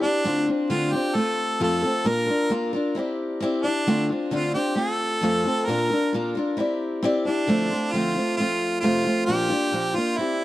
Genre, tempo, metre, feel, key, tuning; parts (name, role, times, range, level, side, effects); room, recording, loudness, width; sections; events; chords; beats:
rock; 133 BPM; 4/4; straight; F major; A4 = 440 Hz
clear harmonica; melody; 0.0-10.4 s; D4 to Bb4; -26 LUFS; right 1 dB; analog delay
picked steel-string acoustic guitar; accompaniment; 0.0-10.4 s; F2 to D5; -23 LUFS; left 1 dB
light reverb; dark, warm production; -21 LUFS; side -15 dB against mid
0.0-10.4 A section
0.3 Dm7; 1.2 F; 2.1 Bb; 3.0 Cadd9; 3.9 Dm7; 4.8 F; 5.7 Bb; 6.6 Cadd9; 7.5 Dm7; 8.4 F; 9.3 Bb
| 0.26 0.71 1.17 1.62 | 2.07 2.52 2.98 3.43 | 3.88 4.33 4.78 5.23 | 5.68 6.14 6.59 7.04 | 7.49 7.94 8.39 8.84 | 9.29 9.74 10.20